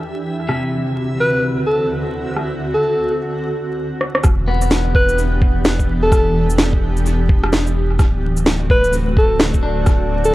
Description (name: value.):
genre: future garage.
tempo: 128 BPM.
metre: 4/4.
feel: swing 61% on 16ths.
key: E minor.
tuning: A4 = 439 Hz.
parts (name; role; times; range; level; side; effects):
granular cloud pad; sustained chords; 0.0-10.3 s; D2 to G4; -23 LUFS; right 1 dB; built-in reverb, vintage 12-bit sampler grit, sidechain pumping.
electronic shaker, rim click and snare drum; drums; 0.0-10.3 s; none; -19 LUFS; equal; overdrive, low-pass filter on snare, low-pass filter on perc, low-pass filter on room, tape echo.
backwards swelling texture; texture; 0.0-3.3 s; E4 to E5; -34 LUFS; equal; built-in reverb.
electric guitar at the edge of break-up; accompaniment; 0.5-1.6, 4.5-5.6, 9.6-10.3 s; C3 to D4; -23 LUFS; left 1 dB; sidechain pumping, analog delay.
mellow alto saxophone; melody; 1.2-10.3 s; A4 to B4; -19 LUFS; equal; dub echo.
warm sub bass; bass; 4.2-10.3 s; D1 to E1; -19 LUFS; equal; tube saturation, sidechain pumping.
electronic kick drum; drums; 4.2-10.0 s; none; -14 LUFS; equal; none.
room: light reverb, digital ambience.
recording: echo-heavy mix, vinyl crackle.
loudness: -14 LUFS.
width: side -17 dB against mid.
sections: 0.0-4.2 A section; 4.2-10.3 B section.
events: break 3.3-4.2; drum fill 4.0.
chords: 0.5 D7; 4.2 Em7; 8.0 D7.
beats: 0.02 | 0.49 0.96 1.43 1.90 | 2.37 2.84 3.31 3.77 | 4.24 4.71 5.18 5.65 | 6.12 6.59 7.06 7.52 | 7.99 8.46 8.93 9.40 | 9.87 10.34.